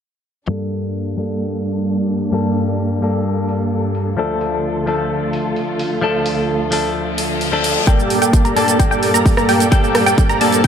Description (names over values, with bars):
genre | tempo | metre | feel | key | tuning
EDM, festival progressive house | 130 BPM | 4/4 | straight | G minor | A4 = 440 Hz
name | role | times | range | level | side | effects
direct-recorded clean electric guitar | accompaniment | 0.5-10.7 s | G2 to A4 | -20 LUFS | left 2 dB | lush chorus, sidechain pumping, ping-pong delay
warm studio string section | sustained chords | 0.5-10.7 s | D2 to A4 | -22 LUFS | right 2 dB | vintage 12-bit sampler grit, sidechain pumping
house drum kit | drums | 0.7-10.7 s | hi-hat, rim click, shaker | -22 LUFS | right 3 dB | none
reverse cymbal and riser | sound effects | 7.1-10.7 s | none | -26 LUFS | left 4 dB | none
wide unison pluck | arpeggios | 7.9-10.7 s | G5 to Bb5 | -20 LUFS | moving between left 3 dB and right 4 dB | auto-pan, sidechain pumping, ping-pong delay
dense compressed supersaw | riff | 7.9-10.7 s | Bb3 to Bb5 | -16 LUFS | right 1 dB | sidechain pumping, low-pass filter, ping-pong delay
electronic kick drum | drums | 7.9-10.7 s | none | -14 LUFS | equal | none
room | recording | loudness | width
light reverb | low-pass filter | -15 LUFS | side -8 dB against mid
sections
0.5-7.9 A section; 7.9-10.7 B section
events
filter sweep 0.5-7.9; reverse cymbal 7.1-7.9; build-up 7.9-10.7; filter sweep on supersaw synth 7.9-10.7; filter sweep on synth pluck 7.9-10.7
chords
0.5 Gmadd9; 4.2 Dm; 7.9 Gmadd9